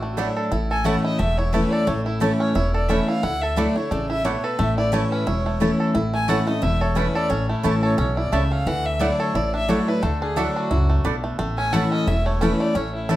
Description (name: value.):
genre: bluegrass.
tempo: 177 BPM.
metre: 4/4.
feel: swing 56% on 8ths.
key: A major.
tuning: A4 = 440 Hz.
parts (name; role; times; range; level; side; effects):
rich fiddle; melody; 0.0-13.2 s; E4 to G#5; -27 LUFS; equal; none.
picked steel-string acoustic guitar; accompaniment; 0.0-13.2 s; E2 to E4; -23 LUFS; left 1 dB; none.
bluegrass banjo; arpeggios; 0.0-13.2 s; E3 to A4; -27 LUFS; right 2 dB; none.
upright bass; bass; 0.0-13.2 s; E1 to D2; -24 LUFS; equal; none.
mandolin; stabs; 0.2-13.2 s; A3 to A5; -29 LUFS; right 6 dB; none.
room: moderate studio reverb, RT60 0.6 s.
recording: none.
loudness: -19 LUFS.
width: side -14 dB against mid.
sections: 0.0-5.9 A section; 5.9-13.2 A section.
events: none.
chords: 0.0 Dadd9; 0.5 A; 3.2 Dadd9; 4.6 A; 8.7 Dadd9; 11.4 A.